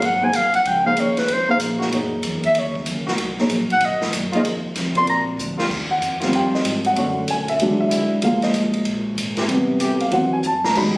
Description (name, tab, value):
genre	jazz, big band swing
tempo	190 BPM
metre	4/4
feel	swing 64% on 8ths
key	unclear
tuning	A4 = 440 Hz
part	breathy clarinet	melody	0.0-5.2 s	Cb5 to C6	-18 LUFS	equal	none
part	picked steel-string acoustic guitar	accompaniment	0.0-5.6, 10.8-11.0 s	F2 to F#4	-28 LUFS	equal	none
part	clear trombone section	sustained chords	0.0-10.1 s	D3 to G4	-27 LUFS	equal	none
part	upright bass	bass	0.0-11.0 s	F1 to Bb2	-32 LUFS	equal	none
part	swinging big-band drum kit	drums	0.0-10.8 s	crash cymbal, hi-hat, kick drum, ride cymbal, snare drum	-27 LUFS	equal	none
part	warm baby grand piano	accompaniment	0.2-11.0 s	C3 to B5	-20 LUFS	equal	none
room	moderate plate reverb, RT60 1.2 s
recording	recorded on a phone in the room, club reverb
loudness	-17 LUFS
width	side -24 dB against mid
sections	0.0-5.7 A section; 5.7-11.0 A section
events	clarinet solo 0.0-5.7; drum fill 5.4-5.7, 10.4-10.8; grand piano solo 5.7-11.0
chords	0.0 Ab7; 0.7 Db69; 1.9 Gb7; 3.2 Bmaj7; 4.4 Fm7; 5.1 Bb7; 5.7 Eb69; 7.0 Bm7; 7.6 E9; 8.2 Ab69; 9.5 Am7; 10.1 D9